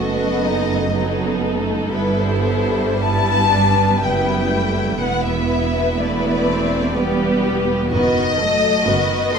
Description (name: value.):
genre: classical, slow romantic movement for string orchestra.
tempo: 53-64 BPM.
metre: 3/4.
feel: rubato.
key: E minor.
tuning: A4 = 440 Hz.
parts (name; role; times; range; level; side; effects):
dark studio violin section; melody; 0.0-9.4 s; B4 to C6; -21 LUFS; left 5 dB; none.
clear studio violin section; second line; 0.0-9.4 s; D4 to D#5; -23 LUFS; left 2 dB; none.
rich symphonic viola section; accompaniment; 0.0-9.4 s; D#3 to C4; -22 LUFS; right 3 dB; none.
clear studio double bass section; bass; 0.0-9.4 s; E1 to G1; -24 LUFS; right 3 dB; none.
rich studio cello section; bass; 0.0-9.4 s; E2 to G2; -24 LUFS; right 5 dB; none.
room: moderate recital hall reverb, RT60 1.4 s.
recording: none.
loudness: -16 LUFS.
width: side -6 dB against mid.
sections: 0.0-9.4 A section.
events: none.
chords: 0.0 B7/F#; 1.9 Em/G; 5.0 Em; 7.9 B7/F#.